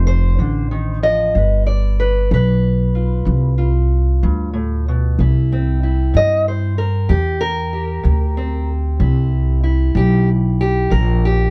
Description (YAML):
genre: acoustic country blues, solo or duo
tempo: 63 BPM (dotted quarters)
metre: 12/8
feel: straight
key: unclear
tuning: A4 = 438 Hz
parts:
  - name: fingerpicked steel-string acoustic guitar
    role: melody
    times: 0.0-11.5 s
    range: G2 to Eb5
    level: -23 LUFS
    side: equal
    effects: none
  - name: upright bass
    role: bass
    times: 0.0-11.5 s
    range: F1 to G2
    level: -18 LUFS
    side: equal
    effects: none
room: little or no reverb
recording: dark, warm production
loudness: -17 LUFS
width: mono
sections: 0.0-5.2 A section; 5.2-11.5 B section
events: steel-string acoustic guitar solo 5.2-11.5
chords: 0.0 F7; 1.3 G7; 5.2 C7